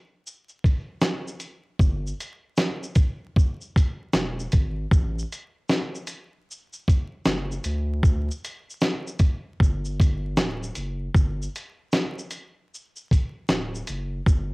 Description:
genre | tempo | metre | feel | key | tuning
lo-fi hip hop | 77 BPM | 4/4 | swing 63% on 16ths | unclear | A4 = 440 Hz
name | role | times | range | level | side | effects
dusty soul sampler-style drum kit | drums | 0.3-14.5 s | hi-hat, kick drum, shaker, snare drum | -21 LUFS | equal | cassette tape
saturated sub bass | bass | 1.8-14.5 s | D1 to D2 | -29 LUFS | equal | none
room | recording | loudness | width
light reverb | home recording on cassette, vinyl crackle | -22 LUFS | side -27 dB against mid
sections
0.0-11.1 A section; 11.1-14.5 B section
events
break 0.0-1.8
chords
none

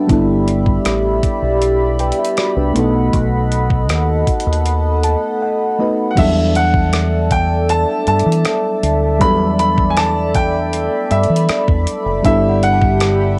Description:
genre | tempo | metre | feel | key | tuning
contemporary R&B | 79 BPM | 4/4 | straight | E minor | A4 = 439 Hz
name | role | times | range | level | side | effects
mellow FM electric piano | accompaniment | 0.0-13.4 s | F#3 to B5 | -22 LUFS | equal | chorus, phaser, cassette tape
chorused pulse-width pad | sustained chords | 0.0-13.4 s | G4 to B5 | -21 LUFS | equal | cassette tape
deep dub fingered electric bass | bass | 0.1-13.4 s | F#1 to E3 | -20 LUFS | equal | none
clean 12-bit digital drum machine | drums | 0.1-13.2 s | crash cymbal, hi-hat, kick drum, rim click | -22 LUFS | equal | none
bright grand piano | melody | 6.1-13.4 s | E5 to B5 | -21 LUFS | equal | cassette tape, tape echo
synth chime | texture | 12.2-13.4 s | D5 to A5 | -33 LUFS | equal | none
room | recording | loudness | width
light reverb | home recording on cassette | -15 LUFS | mono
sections
0.0-6.2 A section; 6.2-13.4 B section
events
FM electric piano fill 4.7-6.2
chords
0.1 G6; 2.8 B7; 6.2 Em11; 12.2 G6

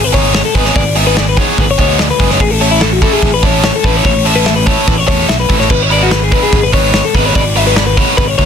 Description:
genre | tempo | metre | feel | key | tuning
math rock and midwest emo | 146 BPM | 4/4 | straight | unclear | A4 = 439 Hz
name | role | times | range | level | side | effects
twelve-string electric guitar | arpeggios | 0.0-8.5 s | E4 to E5 | -14 LUFS | left 7 dB | plate reverb
fuzz fingered electric bass | bass | 0.0-8.5 s | F#1 to E2 | -16 LUFS | right 1 dB | overdrive
biting overdriven guitar | riff | 0.1-8.5 s | G#3 to B4 | -15 LUFS | right 3 dB | none
loose indie drum kit | drums | 0.1-8.5 s | crash cymbal, hi-hat, kick drum, snare drum | -13 LUFS | equal | soft clipping on snare
room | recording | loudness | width
little or no reverb | dense, heavily limited modern master | -9 LUFS | side -7 dB against mid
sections
0.0-8.5 A section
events
none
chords
0.0 G#dim; 2.4 Aadd9; 5.7 G#dim

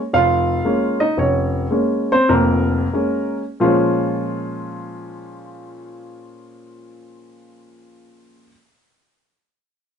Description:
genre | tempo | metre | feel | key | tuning
solo jazz | 85-121 BPM | 4/4 | swing 67% on 8ths, rubato | Bb minor | A4 = 440 Hz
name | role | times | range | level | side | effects
warm upright piano | solo | 0.1-8.5 s | F1 to F5 | -17 LUFS | equal | none
room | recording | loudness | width
light reverb | nothing above 10.9 kHz | -16 LUFS | side -7 dB against mid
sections
0.0-3.6 A section; 3.6-9.2 B section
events
slowing down 0.0-3.6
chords
0.0 Bbm7

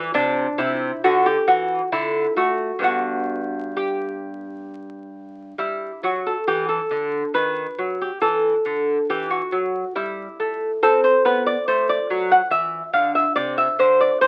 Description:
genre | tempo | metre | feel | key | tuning
classical, baroque-style dance for lute | 64-72 BPM | 3/4 | rubato | G major, E minor from 5.6 s | A4 = 439 Hz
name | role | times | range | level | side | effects
lute | solo | 0.0-14.3 s | G2 to F#5 | -21 LUFS | equal | none
room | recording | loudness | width
moderate small room reverb, RT60 0.5 s | very old 78 rpm record, vinyl crackle | -21 LUFS | mono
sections
0.0-5.6 A section; 5.6-14.3 A section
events
none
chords
0.1 N.C.; 1.0 Dadd9; 1.9 D; 2.9 G; 5.6 Em; 7.3 B/D#; 8.2 Em; 10.8 Am; 12.5 Dmadd9; 13.4 Am/C (rootless)

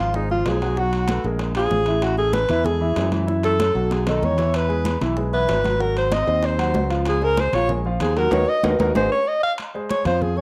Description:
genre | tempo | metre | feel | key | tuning
Afro-Cuban jazz | 190 BPM | 4/4 | straight | unclear | A4 = 440 Hz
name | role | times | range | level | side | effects
clear alto saxophone | melody | 0.0-10.4 s | Eb4 to F5 | -24 LUFS | equal | cassette tape, plate reverb
dark concert grand piano | accompaniment | 0.0-10.4 s | Eb3 to Gb5 | -28 LUFS | equal | cassette tape, plate reverb
modern bright fingered electric bass | bass | 0.0-10.4 s | Ab1 to Gb2 | -26 LUFS | equal | none
bongos | percussion | 0.1-9.0 s | none | -36 LUFS | equal | none
congas | percussion | 0.1-10.4 s | none | -32 LUFS | equal | none
timbales | percussion | 0.5-10.2 s | none | -32 LUFS | equal | none
room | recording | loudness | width
moderate studio reverb, RT60 0.6 s | home recording on cassette | -21 LUFS | mono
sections
0.0-9.6 A section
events
alto saxophone solo 0.0-10.4; drum fill 3.3-4.5, 9.1-9.6; band accent 8.3-9.6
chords
0.0 Dbmaj7 (rootless); 0.8 Cb5; 1.4 Bb5; 2.0 Asus2; 3.3 Gbm7; 3.9 Cb7; 4.5 Eadd9; 5.8 Ab7; 7.1 Dbmaj7; 7.7 Bb5; 8.3 Ebm; 9.0 Ab5; 9.6 Dbmaj7 (rootless)

